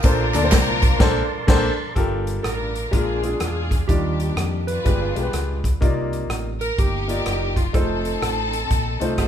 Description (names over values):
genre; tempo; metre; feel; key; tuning
uptempo gospel; 125 BPM; 4/4; swing 64% on 8ths; Bb major; A4 = 440 Hz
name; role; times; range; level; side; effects
rich studio string section; melody; 0.0-9.3 s; Bb3 to Cb5; -27 LUFS; left 3 dB; none
warm baby grand piano; accompaniment; 0.0-9.3 s; G2 to A5; -24 LUFS; left 2 dB; none
tonewheel organ; sustained chords; 0.0-1.9 s; Bb4 to C6; -29 LUFS; right 3 dB; slow rotary speaker
fingered electric bass; bass; 0.0-9.3 s; F1 to F2; -26 LUFS; equal; none
natural country drum kit; drums; 0.0-9.3 s; crash cymbal, hi-hat, kick drum, rim click, snare drum; -21 LUFS; equal; none
tambourine and handclaps; percussion; 0.0-0.9 s; none; -30 LUFS; right 5 dB; none
clean lap steel guitar; melody; 2.4-9.3 s; F4 to Cb5; -29 LUFS; right 5 dB; none
room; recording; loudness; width
moderate recital hall reverb, RT60 1.4 s; recorded in a church or concert hall; -18 LUFS; side -9 dB against mid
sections
0.0-2.0 A section; 2.0-9.3 B section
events
band accent 1.0-2.0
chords
0.0 Bbmaj9; 2.0 Gm9; 2.9 Bb7; 3.9 Ebmaj9; 4.9 G7b9; 5.8 Cm11; 7.7 F7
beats
| 0.04 0.52 1.00 1.48 | 1.96 2.44 2.93 3.41 | 3.89 4.37 4.86 5.34 | 5.82 6.30 6.78 7.26 | 7.75 8.23 8.71 9.19